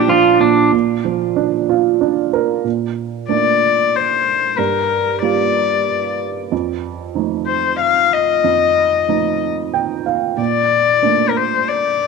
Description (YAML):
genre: acoustic folk-pop ballad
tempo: 93 BPM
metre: 3/4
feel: straight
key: Bb major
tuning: A4 = 440 Hz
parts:
  - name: warm cello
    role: melody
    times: 0.0-0.4, 3.3-12.1 s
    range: D4 to F5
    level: -15 LUFS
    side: left 9 dB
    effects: none
  - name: pedal steel guitar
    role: second line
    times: 0.0-0.7 s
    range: D4 to G4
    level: -15 LUFS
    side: right 2 dB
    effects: none
  - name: warm upright piano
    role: accompaniment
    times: 0.0-12.1 s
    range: Bb1 to G5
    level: -18 LUFS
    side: right 13 dB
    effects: none
room: light reverb, studio reverb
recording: 1960s-style stereo with parts hard left and right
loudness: -14 LUFS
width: side -4 dB against mid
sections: 0.7-2.7 A section; 2.7-12.1 B section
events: none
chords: 0.0 Bb; 2.7 Bbmaj7; 4.6 Gm7; 6.5 F7; 10.4 Bbmaj7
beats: 0.09 | 0.73 1.37 2.01 | 2.65 3.30 3.94 | 4.59 5.23 5.87 | 6.51 7.16 7.80 | 8.45 9.09 9.74 | 10.39 11.04 11.68